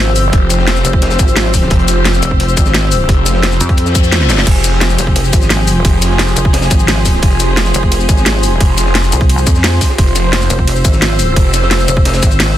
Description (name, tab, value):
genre	dark technical drum and bass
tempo	174 BPM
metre	4/4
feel	straight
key	F harmonic minor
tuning	A4 = 440 Hz
part	dark studio string section	sustained chords	0.0-12.6 s	F3 to C5	-19 LUFS	left 2 dB	sidechain pumping
part	pulsing pluck wobble bass	bass	0.0-12.6 s	F1 to F2	-14 LUFS	equal	chorus
part	warbly tape-like pad	texture	0.0-12.6 s	F4 to E6	-20 LUFS	equal	chorus, built-in reverb, sidechain pumping
part	crunchy breakbeat drum kit	drums	0.2-12.6 s	hi-hat, snare drum	-25 LUFS	equal	none
part	drum and bass drum kit	drums	0.2-12.5 s	crash cymbal, hi-hat, ride cymbal, shaker, snare drum	-16 LUFS	left 1 dB	overdrive, studio reverb
part	phased detuned saw bass	bass	0.3-11.9 s	F1	-14 LUFS	equal	phaser, overdrive
part	electronic kick drum	drums	0.3-12.3 s	none	-12 LUFS	equal	overdrive, studio reverb
part	reverse cymbal	sound effects	3.9-4.5 s	none	-21 LUFS	left 5 dB	none
room	small room ambience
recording	dense, heavily limited modern master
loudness	-9 LUFS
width	side -12 dB against mid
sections	0.0-12.6 A section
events	reverse cymbal 3.9-4.5; kick drops out 4.1-4.5; drum fill 4.2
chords	0.0 Fm